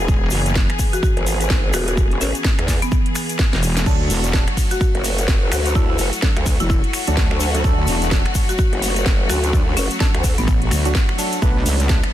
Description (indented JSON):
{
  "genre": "bass house",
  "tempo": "127 BPM",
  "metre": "4/4",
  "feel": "swing 60% on 16ths",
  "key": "unclear",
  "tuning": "A4 = 440 Hz",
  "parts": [
    { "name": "clear symphonic string section", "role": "sustained chords", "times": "0.0-12.1 s", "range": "E3 to G#4", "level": "-26 LUFS", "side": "left 2 dB", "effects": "sidechain pumping" },
    { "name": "growl bass", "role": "bass", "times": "0.0-10.4 s", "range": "E1 to E2", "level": "-21 LUFS", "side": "equal", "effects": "chorus, overdrive, sidechain pumping" },
    { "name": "wobble bass", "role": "bass", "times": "0.1-0.7, 3.5-12.0 s", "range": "E1 to D2", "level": "-20 LUFS", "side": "equal", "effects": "chorus, overdrive, sidechain pumping" },
    { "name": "electronic kick drum", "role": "drums", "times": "0.1-12.0 s", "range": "none", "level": "-18 LUFS", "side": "equal", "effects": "studio reverb" },
    { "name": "egg shaker", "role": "percussion", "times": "0.1-12.0 s", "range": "none", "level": "-31 LUFS", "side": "left 5 dB", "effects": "none" },
    { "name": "garage drum kit", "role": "drums", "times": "0.3-12.1 s", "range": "crash cymbal, finger snaps, hi-hat, ride cymbal, snare drum", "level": "-25 LUFS", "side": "right 1 dB", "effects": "studio reverb" },
    { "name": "buzzing marimba with hard mallets", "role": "melody", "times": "0.9-11.0 s", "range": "B3 to F#4", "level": "-27 LUFS", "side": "left 2 dB", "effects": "digital delay" },
    { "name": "percussive organ stab", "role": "stabs", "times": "3.9-12.0 s", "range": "F#3 to B4", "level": "-27 LUFS", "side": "right 3 dB", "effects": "analog chorus, sidechain pumping, digital delay" }
  ],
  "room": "little or no reverb",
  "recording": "dense, heavily limited modern master",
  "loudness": "-16 LUFS",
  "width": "side -12 dB against mid",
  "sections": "0.0-12.1 A section",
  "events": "drum fill 3.5-3.9",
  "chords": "0.0 E; 3.9 D; 11.4 Bm7"
}